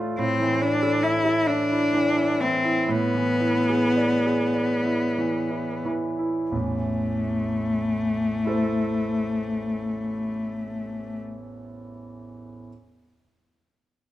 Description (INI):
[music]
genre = classical, romantic duo for cello and grand piano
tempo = 28-48 BPM (dotted quarters)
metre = 6/8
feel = rubato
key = A minor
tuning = A4 = 439 Hz
[part]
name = bright concert grand piano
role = accompaniment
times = 0.0-12.7 s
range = A1 to E5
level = -27 LUFS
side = right 2 dB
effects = none
[part]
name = clear cello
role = melody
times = 0.2-11.2 s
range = A3 to E4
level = -24 LUFS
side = left 1 dB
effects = none
[sound]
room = moderate recital hall reverb, RT60 1.6 s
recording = close, detailed microphones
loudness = -22 LUFS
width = side -14 dB against mid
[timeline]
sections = 0.0-6.5 A section; 6.5-10.4 B section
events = slowing down 0.0-6.5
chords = 0.2 A5; 2.9 E7/A; 6.5 Am